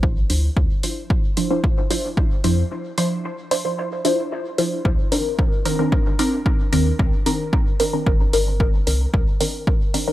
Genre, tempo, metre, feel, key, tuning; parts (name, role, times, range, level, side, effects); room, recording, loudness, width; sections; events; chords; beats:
dub techno; 112 BPM; 4/4; straight; A4 = 441 Hz
warm sub bass; bass; 0.0-9.2 s; G1 to F2; -21 LUFS; equal; tube saturation, sidechain pumping
electronic kick drum; drums; 0.0-9.8 s; -19 LUFS; equal
filtered dub chord stab; stabs; 0.3-10.1 s; Eb3 to C5; -22 LUFS; equal; phaser, sidechain pumping, dub echo
electronic hi-hat; drums; 0.3-10.1 s; -27 LUFS; equal; overdrive
digital ambience; dry, gritty hardware recording; -18 LUFS; side -15 dB against mid
0.0-10.1 A section
filter sweep on synth stab 0.0-10.1; break 2.7-4.9
0.0 Dm9; 4.9 Cm9
0.03 | 0.57 1.10 1.64 2.17 | 2.71 3.25 3.78 4.32 | 4.85 5.39 5.92 6.46 | 7.00 7.53 8.07 8.60 | 9.14 9.67